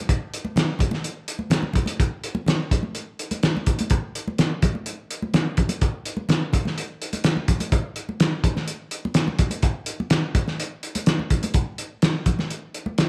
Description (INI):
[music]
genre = rock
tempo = 126 BPM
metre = 4/4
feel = straight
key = none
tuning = none
[part]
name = cloth-damped thuddy drum kit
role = drums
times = 0.1-13.1 s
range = hi-hat, kick drum, snare drum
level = -24 LUFS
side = equal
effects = none
[part]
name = congas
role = percussion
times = 0.4-13.1 s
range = none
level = -32 LUFS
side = equal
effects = none
[sound]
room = light reverb, small room ambience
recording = none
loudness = -24 LUFS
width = mono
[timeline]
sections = 0.0-13.1 A section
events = none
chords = none